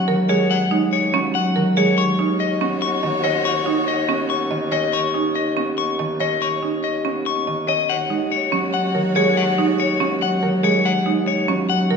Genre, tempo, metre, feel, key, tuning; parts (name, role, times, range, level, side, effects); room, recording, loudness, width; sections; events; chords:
classical, minimalist pattern music; 284 BPM (eighths); 7/8; straight; Eb minor; A4 = 440 Hz
electric guitar at the edge of break-up; melody; 0.0-12.0 s; Db5 to C#6; -22 LUFS; left 7 dB
concert harp; accompaniment; 0.0-12.0 s; Eb3 to C#4; -23 LUFS; equal
mellow bassoon; bass; 0.0-12.0 s; Eb2; -27 LUFS; equal
buzzing marimba with hard mallets; arpeggios; 0.1-12.0 s; Db4 to Eb5; -24 LUFS; right 7 dB
rich chamber string section; sustained chords; 2.0-4.7, 7.9-10.6 s; F#4 to C#5; -28 LUFS; left 2 dB
wet recital hall reverb, RT60 1.7 s; recorded in a church or concert hall; -17 LUFS; side -5 dB against mid
0.0-12.0 A section
0.0 Ebm7; 2.0 Bsus2/Eb; 7.9 Ebm7